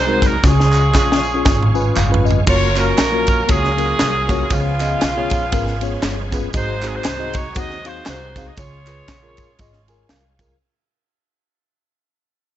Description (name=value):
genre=uptempo gospel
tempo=118 BPM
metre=4/4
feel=swing 58% on 8ths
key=unclear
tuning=A4 = 440 Hz
part: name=clear horn section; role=melody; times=0.0-10.1 s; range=G#3 to D#5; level=-21 LUFS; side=right 1 dB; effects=none
part: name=bright tonewheel organ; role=sustained chords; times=0.0-10.6 s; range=E#3 to A#4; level=-29 LUFS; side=right 1 dB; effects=slow rotary speaker, chorus vibrato
part: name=upright bass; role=bass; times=0.0-10.5 s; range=F#1 to D#2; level=-21 LUFS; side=equal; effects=none
part: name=mellow tine electric piano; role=accompaniment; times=0.1-10.6 s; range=G#2 to G#5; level=-23 LUFS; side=left 3 dB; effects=medium stereo tremolo
part: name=crisp fusion drum kit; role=drums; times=0.2-10.5 s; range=crash cymbal, kick drum, ride cymbal, snare drum, toms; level=-19 LUFS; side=equal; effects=none
part: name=tambourine and handclaps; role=percussion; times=0.2-10.5 s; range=none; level=-30 LUFS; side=right 3 dB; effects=none
room=light reverb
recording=nothing above 8.0 kHz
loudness=-15 LUFS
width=side -12 dB against mid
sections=0.0-2.5 A section; 2.5-10.6 B section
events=drum fill 0.4-2.5; tine electric piano fill 1.5-2.5, 9.6-10.6; fade-out 2.5-10.6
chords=0.4 C#; 2.5 F#maj7; 4.5 C#7; 6.5 G#7; 8.6 C#